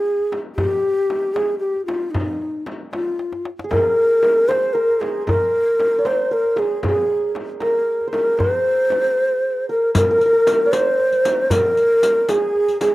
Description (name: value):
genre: Persian modal ensemble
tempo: 77 BPM (dotted quarters)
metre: 6/8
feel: straight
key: unclear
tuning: A4 = 438 Hz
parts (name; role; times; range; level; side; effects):
- breathy mellow ney; melody; 0.0-12.9 s; Eb4 to C5; -17 LUFS; equal; plate reverb
- tombak; percussion; 0.2-12.9 s; none; -24 LUFS; equal; none
- frame drum; percussion; 0.3-12.9 s; none; -30 LUFS; left 1 dB; none
- santur; second line; 3.6-12.9 s; Ab4 to Db5+45c; -26 LUFS; right 3 dB; plate reverb
- riq; percussion; 9.9-12.9 s; none; -28 LUFS; left 3 dB; none
room: light reverb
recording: rough home demo mix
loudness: -16 LUFS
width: side -17 dB against mid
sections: 0.0-9.9 A section; 9.9-12.9 B section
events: drum fill 3.2-3.7; break 9.2-9.9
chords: none